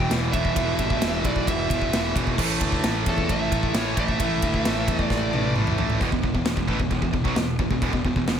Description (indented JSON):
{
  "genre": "heavy metal",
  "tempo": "132 BPM",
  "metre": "4/4",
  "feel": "straight",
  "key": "unclear",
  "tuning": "A4 = 441 Hz",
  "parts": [
    { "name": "high-gain lead guitar", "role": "melody", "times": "0.0-5.5 s", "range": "A4 to E5", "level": "-29 LUFS", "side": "right 2 dB", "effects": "distortion, digital delay" },
    { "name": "fuzz guitar", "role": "riff", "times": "0.0-8.4 s", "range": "E2 to A3", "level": "-32 LUFS", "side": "left 1 dB", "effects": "distortion" },
    { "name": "heavy high-gain guitar", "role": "riff", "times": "0.0-8.4 s", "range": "E2 to A3", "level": "-29 LUFS", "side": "left 10 dB", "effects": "distortion" },
    { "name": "tight distorted guitar", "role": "riff", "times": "0.0-8.4 s", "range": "E2 to A3", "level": "-28 LUFS", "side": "right 11 dB", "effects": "distortion" },
    { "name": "fuzz picked electric bass", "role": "bass", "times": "0.0-8.4 s", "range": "E1 to E2", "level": "-28 LUFS", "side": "equal", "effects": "overdrive" },
    { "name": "big rock drum kit", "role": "drums", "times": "0.0-8.4 s", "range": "china cymbal, crash cymbal, kick drum, ride cymbal, snare drum, toms", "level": "-26 LUFS", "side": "equal", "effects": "none" }
  ],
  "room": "light reverb",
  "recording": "none",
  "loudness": "-21 LUFS",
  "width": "side -8 dB against mid",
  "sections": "0.0-6.0 A section; 6.0-8.4 B section",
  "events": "drum fill 5.1-6.0",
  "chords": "0.0 E5; 2.4 A5; 6.0 E5"
}